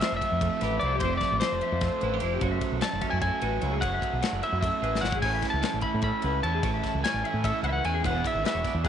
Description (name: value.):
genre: math rock and midwest emo.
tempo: 299 BPM (eighths).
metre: 7/8.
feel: straight.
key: A major.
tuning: A4 = 436 Hz.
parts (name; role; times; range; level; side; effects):
electric guitar at the edge of break-up; melody; 0.0-8.9 s; C5 to B5; -29 LUFS; left 2 dB; spring reverb, tape echo.
twangy electric guitar; accompaniment; 0.0-8.9 s; E2 to G#4; -36 LUFS; right 15 dB; none.
electric guitar through a small old amp; arpeggios; 0.0-8.9 s; G4 to E5; -35 LUFS; left 13 dB; spring reverb.
raw garage guitar; riff; 0.0-8.9 s; A2 to G#4; -34 LUFS; right 13 dB; overdrive.
modern studio drum kit; drums; 0.0-8.9 s; crash cymbal, kick drum, ride cymbal, snare drum; -33 LUFS; left 3 dB; none.
growling fingered electric bass; bass; 0.1-8.9 s; E1 to A2; -30 LUFS; right 1 dB; overdrive.
room: little or no reverb.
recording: 1960s-style stereo with parts hard left and right, nothing above 10.8 kHz.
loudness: -24 LUFS.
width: side -9 dB against mid.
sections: 0.0-8.9 A section.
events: drum fill 4.9-5.2.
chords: 0.0 Fmaj9; 2.4 F#m9; 5.2 Amaj9; 8.0 E9.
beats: 0.01 0.21 0.41 0.61 0.81 | 1.01 1.21 1.41 1.61 1.81 2.02 2.22 | 2.42 2.62 2.82 3.02 3.22 3.42 3.62 | 3.82 4.02 4.22 4.42 4.63 4.83 5.03 | 5.23 5.43 5.63 5.83 6.03 6.24 6.44 | 6.64 6.84 7.04 7.24 7.44 7.64 7.84 | 8.05 8.25 8.45 8.65 8.85.